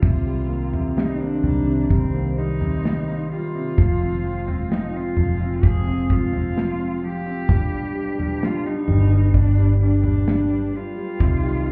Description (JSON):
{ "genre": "pop ballad", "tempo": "65 BPM", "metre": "4/4", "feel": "straight", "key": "C minor", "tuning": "A4 = 441 Hz", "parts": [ { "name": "rich cello", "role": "melody", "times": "0.0-11.7 s", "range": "C4 to Ab4", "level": "-30 LUFS", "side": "equal", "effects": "none" }, { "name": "mellow French horn section", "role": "second line", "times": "0.0-11.7 s", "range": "B2 to F4", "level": "-31 LUFS", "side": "equal", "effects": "none" }, { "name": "bright upright piano", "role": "accompaniment", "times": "0.0-11.7 s", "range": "C3 to D4", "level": "-32 LUFS", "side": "equal", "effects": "none" }, { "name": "glassy FM pad", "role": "sustained chords", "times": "0.0-11.7 s", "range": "Eb3 to C6", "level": "-34 LUFS", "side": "equal", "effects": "ensemble chorus, built-in reverb" }, { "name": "vintage muted fingered electric bass", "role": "bass", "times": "0.0-11.7 s", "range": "F1 to C2", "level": "-24 LUFS", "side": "equal", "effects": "none" }, { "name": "modern studio drum kit", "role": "drums", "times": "0.0-11.4 s", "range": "crash cymbal, kick drum, snare drum, toms", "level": "-24 LUFS", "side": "equal", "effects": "none" }, { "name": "egg shaker", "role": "percussion", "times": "0.0-11.7 s", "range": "none", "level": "barely audible", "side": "none", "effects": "none" } ], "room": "small room ambience", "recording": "heard muffled through a wall, club reverb, EQ", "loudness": "-21 LUFS", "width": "mono", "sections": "0.0-11.7 A section", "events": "none", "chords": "0.0 Cm7; 3.8 Fmadd9; 7.5 G; 11.2 Cm" }